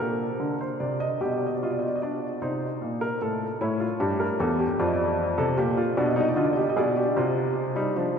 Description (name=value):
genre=classical, baroque-style 3-part fugue for grand piano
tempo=50 BPM (dotted quarters)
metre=6/8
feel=straight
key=C minor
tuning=A4 = 441 Hz
part: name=warm baby grand piano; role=solo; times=0.0-8.2 s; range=E2 to Eb5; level=-23 LUFS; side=equal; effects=none
room=wet cathedral reverb, RT60 5.1 s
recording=minimal, uncompressed stereo recording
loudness=-23 LUFS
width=side -7 dB against mid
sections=0.0-1.2 A section; 1.2-8.2 B section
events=none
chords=0.0 Bbadd9; 1.2 G7/B; 2.4 Cm; 3.6 A7; 4.8 Dm/F; 6.0 G7/B; 7.2 Cm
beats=0.00 | 1.21 2.42 | 3.60 4.79 | 5.96 7.16